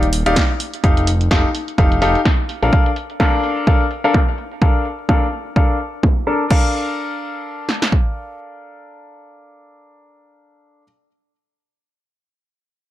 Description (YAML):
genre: piano house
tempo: 127 BPM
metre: 4/4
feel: swing 57% on 16ths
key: Bb major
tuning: A4 = 440 Hz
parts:
  - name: clear grand piano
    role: riff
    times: 0.0-10.8 s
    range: D4 to A5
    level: -20 LUFS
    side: left 2 dB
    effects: sidechain pumping, low-pass filter, ping-pong delay
  - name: fat analog bass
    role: bass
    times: 0.0-2.7 s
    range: Eb1 to Bb1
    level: -18 LUFS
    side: equal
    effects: tube saturation, sidechain pumping
  - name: punchy analog drum machine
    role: drums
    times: 0.0-6.6 s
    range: crash cymbal, hi-hat, snare drum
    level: -24 LUFS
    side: equal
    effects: low-pass filter on hats, low-pass filter on perc, low-pass filter on snare, low-pass filter on cymbals, low-pass filter on room
  - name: punchy analog drum machine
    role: drums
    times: 0.4-8.0 s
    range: kick drum, snare drum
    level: -16 LUFS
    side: equal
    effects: none
room: little or no reverb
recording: none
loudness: -15 LUFS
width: side -14 dB against mid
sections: 0.0-6.5 A section; 6.5-10.3 B section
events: filter sweep on drum 0.0-6.5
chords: 0.0 Ebmaj9; 0.6 F9; 2.5 Bbmaj7